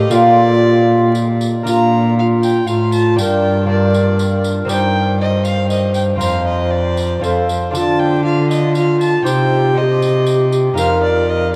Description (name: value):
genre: classical, renaissance-style consort dance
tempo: 118 BPM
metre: 3/4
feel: straight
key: Bb major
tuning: A4 = 440 Hz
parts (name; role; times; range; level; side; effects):
- rich violin; melody; 0.0-11.6 s; C5 to Bb5; -24 LUFS; equal; none
- mellow hollow tenor recorder; second line; 0.0-11.6 s; F4 to D5; -19 LUFS; equal; none
- lute; accompaniment; 0.0-11.6 s; F2 to C5; -22 LUFS; equal; none
- rich cello; bass; 0.0-11.6 s; F2 to D3; -19 LUFS; equal; none
- tambourine; percussion; 0.1-11.0 s; none; -35 LUFS; equal; none
room: wet cathedral reverb, RT60 6.8 s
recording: in a vast, echoing space, vinyl crackle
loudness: -15 LUFS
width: mono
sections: 0.0-1.7 A section; 1.7-11.6 B section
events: none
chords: 0.1 Bb; 3.2 Gm; 4.7 Cm/G; 6.2 Fsus4; 7.2 F; 7.7 Dm; 9.3 Cm; 10.8 F7sus4